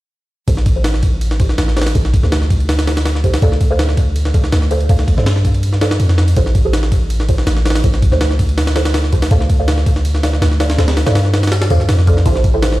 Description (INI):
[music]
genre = drum and bass, jungle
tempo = 163 BPM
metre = 4/4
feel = straight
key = A minor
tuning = A4 = 440 Hz
[part]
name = filtered dub chord stab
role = stabs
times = 0.5-12.8 s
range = E4 to F5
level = -23 LUFS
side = right 1 dB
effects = phaser, ensemble chorus, dub echo
[part]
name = long sustained 808-style bass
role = bass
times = 0.5-12.8 s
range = A1 to G2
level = -15 LUFS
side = equal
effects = none
[part]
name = jungle sampler-style drum kit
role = drums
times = 0.5-12.8 s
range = kick drum, ride cymbal, snare drum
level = -15 LUFS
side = equal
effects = studio reverb
[sound]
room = light reverb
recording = played on a big sound system in a bare room, stone room reverb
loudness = -12 LUFS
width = side -17 dB against mid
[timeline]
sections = 0.5-12.8 A section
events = filter sweep on synth stab 0.5-12.8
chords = 0.5 Am7; 3.4 Dm7; 6.4 Am7; 9.3 Dm7; 12.3 Am7